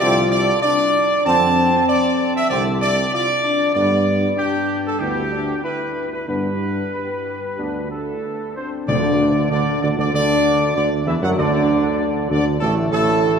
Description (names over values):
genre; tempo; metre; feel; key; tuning
classical; 96 BPM; 4/4; straight; unclear; A4 = 440 Hz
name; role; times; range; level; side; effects
warm trumpet section; melody; 0.0-13.4 s; G4 to A5; -20 LUFS; right 1 dB; none
mellow trombone section; sustained chords; 0.0-13.4 s; A2 to C4; -27 LUFS; right 2 dB; none
warm French horn section; sustained chords; 0.0-13.4 s; A3 to G4; -23 LUFS; left 4 dB; none
mellow tuba; bass; 0.0-13.4 s; A1 to G2; -23 LUFS; right 2 dB; none
timpani; percussion; 8.9-9.8 s; D3; -26 LUFS; equal; none
room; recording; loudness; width
wet church reverb, RT60 3.8 s; minimal, uncompressed stereo recording; -16 LUFS; side -6 dB against mid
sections
0.0-8.9 A section; 8.9-13.4 B section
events
none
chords
0.0 F5; 3.8 G; 8.9 D5